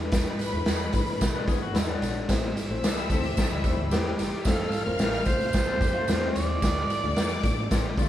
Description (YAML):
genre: uptempo 1960s-style soul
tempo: 111 BPM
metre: 4/4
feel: straight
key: D minor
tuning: A4 = 441 Hz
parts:
  - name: clear studio string section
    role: second line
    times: 0.0-8.1 s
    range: G4 to F6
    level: -36 LUFS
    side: left 1 dB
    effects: none
  - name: reed electric piano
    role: accompaniment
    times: 0.0-8.1 s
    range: G#3 to D5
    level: -34 LUFS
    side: left 3 dB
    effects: overdrive, fast tremolo
  - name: vintage muted fingered electric bass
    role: bass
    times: 0.0-8.1 s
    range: F1 to E3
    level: -33 LUFS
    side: equal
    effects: none
  - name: raw garage drum kit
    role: drums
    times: 0.1-8.1 s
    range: hi-hat, kick drum, snare drum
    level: -26 LUFS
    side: equal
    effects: none
  - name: tambourine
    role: percussion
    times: 0.1-8.1 s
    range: none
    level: -42 LUFS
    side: right 6 dB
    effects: none
  - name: electric guitar at the edge of break-up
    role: riff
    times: 1.3-8.1 s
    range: E3 to B4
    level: -34 LUFS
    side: left 6 dB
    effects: none
  - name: raspy alto saxophone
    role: melody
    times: 3.9-7.9 s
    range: G4 to D5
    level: -30 LUFS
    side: right 2 dB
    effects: none
room: light reverb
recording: band playing live in one room, vinyl crackle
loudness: -23 LUFS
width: side -12 dB against mid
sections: 0.0-8.1 A section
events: none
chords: 0.0 E7; 2.3 Am; 4.5 F; 6.6 Dm